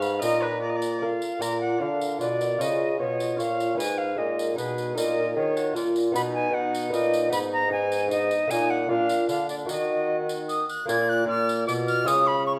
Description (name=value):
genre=classical, renaissance-style consort dance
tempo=152 BPM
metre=3/4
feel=straight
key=unclear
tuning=A4 = 436 Hz
part: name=bright silver concert flute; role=melody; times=0.0-12.5 s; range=Cb5 to Ab6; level=-29 LUFS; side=equal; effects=none
part: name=rich viola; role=second line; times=0.0-12.6 s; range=D4 to F5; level=-37 LUFS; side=equal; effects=none
part: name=lute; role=accompaniment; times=0.0-12.6 s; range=Ab2 to D#5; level=-32 LUFS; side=equal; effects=none
part: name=warm bassoon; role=bass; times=0.0-12.6 s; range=Ab2 to Eb3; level=-31 LUFS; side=equal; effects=none
part: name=tambourine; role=percussion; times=0.0-12.3 s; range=none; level=-42 LUFS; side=equal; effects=none
room=wet recital hall reverb, RT60 1.4 s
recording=none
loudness=-25 LUFS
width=mono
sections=0.0-1.4 A section; 1.4-10.9 B section; 10.9-12.6 B section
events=none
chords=0.2 Bbsus4; 0.6 Bb5; 1.4 Bb; 2.6 Db; 3.8 Abm; 5.0 Bbsus4; 5.8 Bb; 6.1 B; 7.3 Abm; 8.5 Bbsus4; 8.9 Bb; 9.7 Ebm; 10.9 Bb; 12.1 Db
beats=| 0.22 0.62 1.02 | 1.42 1.82 2.21 | 2.61 3.00 3.40 | 3.79 4.18 4.58 | 4.97 5.36 5.75 | 6.14 6.54 6.93 | 7.32 7.71 8.11 | 8.50 8.89 9.29 | 9.69 10.09 10.49 | 10.89 11.29 11.68 | 12.08 12.47